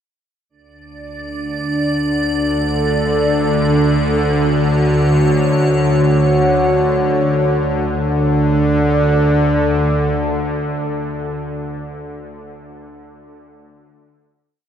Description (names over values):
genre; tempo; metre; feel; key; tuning
dark ambient drone; free time; none; none; unclear; A4 = 440 Hz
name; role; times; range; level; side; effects
dark analog pad; sustained chords; 0.5-11.6 s; D4 to F#5; -19 LUFS; equal; chorus
bowed-like drone; drone; 1.5-11.4 s; D2 to D3; -16 LUFS; equal; built-in reverb
icy glass pad; texture; 1.0-7.9 s; C#5 to D5; -26 LUFS; equal; chorus, built-in reverb
room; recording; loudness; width
wet huge ambient reverb, RT60 7.6 s; in a vast, echoing space; -14 LUFS; side -9 dB against mid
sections
0.5-7.9 A section; 7.9-11.6 final chord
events
fade-out on ambient pad 0.5-7.9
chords
0.5 D5; 4.2 F#5; 7.9 D5